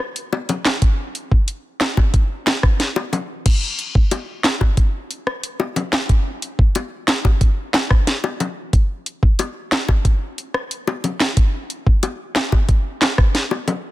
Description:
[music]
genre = dancehall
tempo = 91 BPM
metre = 4/4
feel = straight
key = none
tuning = none
[part]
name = island pop drum kit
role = drums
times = 0.2-13.8 s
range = crash cymbal, handclaps, hi-hat, kick drum, rim click, snare drum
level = -16 LUFS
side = equal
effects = none
[part]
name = bongos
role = percussion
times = 0.3-13.8 s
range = none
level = -23 LUFS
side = left 5 dB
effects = none
[sound]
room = digital ambience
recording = dense, heavily limited modern master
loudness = -17 LUFS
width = side -16 dB against mid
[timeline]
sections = 0.0-3.5 A section; 3.5-13.9 B section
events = none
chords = none

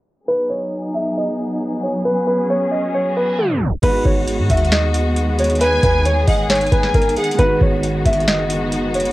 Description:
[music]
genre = hip hop, trap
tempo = 135 BPM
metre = 4/4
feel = half-time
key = G# minor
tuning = A4 = 438 Hz
[part]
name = dark grand piano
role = melody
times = 0.3-9.1 s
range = G#4 to E5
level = -19 LUFS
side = equal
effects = low-pass filter, cassette tape
[part]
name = dark symphonic string section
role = sustained chords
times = 0.3-9.1 s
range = D#3 to G#4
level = -22 LUFS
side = left 1 dB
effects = cassette tape
[part]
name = reverse cymbal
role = sound effects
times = 3.1-3.8 s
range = none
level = -32 LUFS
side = right 5 dB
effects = none
[part]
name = dark grand piano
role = accompaniment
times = 3.8-9.1 s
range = G#3 to F#4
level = -27 LUFS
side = right 5 dB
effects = low-pass filter, cassette tape
[part]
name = clean 808-style bass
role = bass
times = 3.8-9.1 s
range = F#1 to G#2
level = -20 LUFS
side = equal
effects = none
[part]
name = booming analog drum machine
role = drums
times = 3.8-9.1 s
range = crash cymbal, hi-hat, kick drum, snare drum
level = -19 LUFS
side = equal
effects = overdrive, cassette tape
[part]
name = clear studio violin section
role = second line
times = 5.6-7.4 s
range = F#5 to G#5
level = -24 LUFS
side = left 1 dB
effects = cassette tape, analog delay
[sound]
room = light reverb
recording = home recording on cassette, low-pass filter, tape stop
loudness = -15 LUFS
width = side -17 dB against mid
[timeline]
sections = 0.3-3.8 A section; 3.8-9.1 B section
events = filter sweep 0.3-3.8; reverse cymbal 3.1-3.8; tape stop 3.4-3.8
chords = 0.3 G#m7

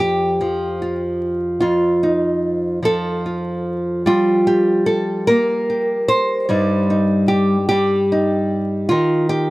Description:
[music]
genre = folk, solo fingerstyle acoustic guitar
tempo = 49 BPM (dotted quarters)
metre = 6/8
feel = straight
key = F mixolydian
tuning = A4 = 440 Hz
[part]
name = nylon-string guitar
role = solo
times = 0.0-9.5 s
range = F2 to C5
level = -16 LUFS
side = equal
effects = none
[sound]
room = moderate plate reverb, RT60 3.5 s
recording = vinyl crackle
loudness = -16 LUFS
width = side -19 dB against mid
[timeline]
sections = 0.0-9.5 A section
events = none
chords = 0.0 F7; 4.1 Gm7; 6.5 Cm/G; 8.9 Ebadd9

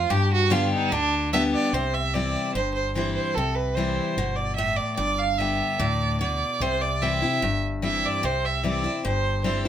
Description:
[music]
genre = honky-tonk and classic country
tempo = 148 BPM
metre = 4/4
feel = straight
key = C major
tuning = A4 = 440 Hz
[part]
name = clear fiddle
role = second line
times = 0.0-9.7 s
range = D4 to F5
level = -25 LUFS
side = right 4 dB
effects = none
[part]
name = picked steel-string acoustic guitar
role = accompaniment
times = 0.0-9.7 s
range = G2 to G4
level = -26 LUFS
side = left 4 dB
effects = none
[part]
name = fingered electric bass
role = bass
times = 0.0-9.7 s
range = G1 to G2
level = -30 LUFS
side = equal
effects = none
[sound]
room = moderate studio reverb, RT60 0.5 s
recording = none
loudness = -22 LUFS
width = side -10 dB against mid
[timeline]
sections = 0.0-1.7 A section; 1.7-9.7 B section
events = fiddle solo 0.0-1.7, 1.7-9.7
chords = 0.1 G; 1.7 C; 5.0 G; 6.6 C

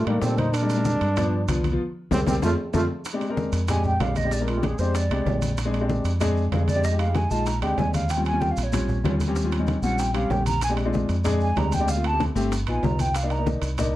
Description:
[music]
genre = Afro-Cuban jazz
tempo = 190 BPM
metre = 4/4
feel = straight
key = Bb mixolydian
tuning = A4 = 440 Hz
[part]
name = clear trombone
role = melody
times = 0.0-2.8 s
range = A3 to Eb4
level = -27 LUFS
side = right 1 dB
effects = plate reverb
[part]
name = breathy mellow silver concert flute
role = second line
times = 0.0-14.0 s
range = F4 to Bb5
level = -28 LUFS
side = right 2 dB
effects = none
[part]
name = deep dub fingered electric bass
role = bass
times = 0.0-14.0 s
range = G1 to Bb2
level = -25 LUFS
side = equal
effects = none
[part]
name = warm baby grand piano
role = accompaniment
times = 0.1-14.0 s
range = Eb3 to Bb4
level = -27 LUFS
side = left 2 dB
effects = none
[part]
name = bongos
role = percussion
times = 0.1-13.9 s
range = none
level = -35 LUFS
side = left 3 dB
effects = none
[part]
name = congas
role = percussion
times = 0.1-13.9 s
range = none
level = -30 LUFS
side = left 1 dB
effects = none
[part]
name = timbales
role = percussion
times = 0.1-13.9 s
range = none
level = -35 LUFS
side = right 5 dB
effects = none
[part]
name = maracas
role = percussion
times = 0.2-13.9 s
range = none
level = -40 LUFS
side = right 3 dB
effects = none
[sound]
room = wet club ambience, RT60 0.5 s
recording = dark, warm production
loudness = -21 LUFS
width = side -15 dB against mid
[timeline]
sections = 0.0-3.1 A section; 3.1-14.0 B section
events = band accent 1.8-3.1; drum fill 2.1-3.1; flute solo 3.1-14.0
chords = 0.0 F13 (rootless); 0.5 Bb13; 1.2 G7; 1.8 C5; 2.4 F; 3.1 Bb13; 6.8 Fm7; 7.5 Bb13; 8.1 Eb13; 10.6 Bb13; 11.9 Dm7; 12.5 G7alt; 13.1 Cm7

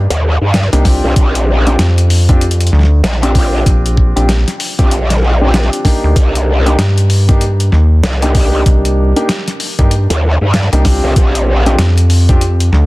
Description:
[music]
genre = glitch hop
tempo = 96 BPM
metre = 4/4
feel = swing 61% on 16ths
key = C minor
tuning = A4 = 440 Hz
[part]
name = rubbery square bass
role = bass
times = 0.0-12.9 s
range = Bb1 to G2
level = -10 LUFS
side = equal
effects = none
[part]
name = growl bass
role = bass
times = 0.1-11.8 s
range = Bb1 to G2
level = -12 LUFS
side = equal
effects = chorus
[part]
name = boom bap sampler-style drum kit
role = drums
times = 0.1-12.9 s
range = hi-hat, snare drum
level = -18 LUFS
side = left 1 dB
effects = none
[part]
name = dark concert grand piano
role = stabs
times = 0.7-12.4 s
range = Bb3 to G4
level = -18 LUFS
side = equal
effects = sidechain pumping, dub echo
[part]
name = electronic kick drum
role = drums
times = 0.8-12.4 s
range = none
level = -11 LUFS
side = equal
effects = none
[sound]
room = little or no reverb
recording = dense, heavily limited modern master, vinyl crackle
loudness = -9 LUFS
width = side -20 dB against mid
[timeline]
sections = 0.0-12.9 A section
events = none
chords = 0.0 Cm; 1.2 Bb6; 6.2 Cm7; 11.2 Bb6

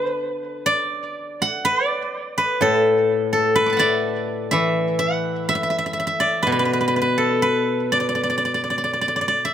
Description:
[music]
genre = chinese traditional, Chinese solo plucked strings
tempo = 62 BPM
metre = 4/4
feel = rubato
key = D gong mode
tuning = A4 = 441 Hz
[part]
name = steel-string zither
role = solo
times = 0.0-9.5 s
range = A2 to D6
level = -18 LUFS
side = equal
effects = none
[sound]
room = light reverb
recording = close, detailed microphones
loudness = -18 LUFS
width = side -9 dB against mid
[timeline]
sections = 0.0-9.5 A section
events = none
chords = none

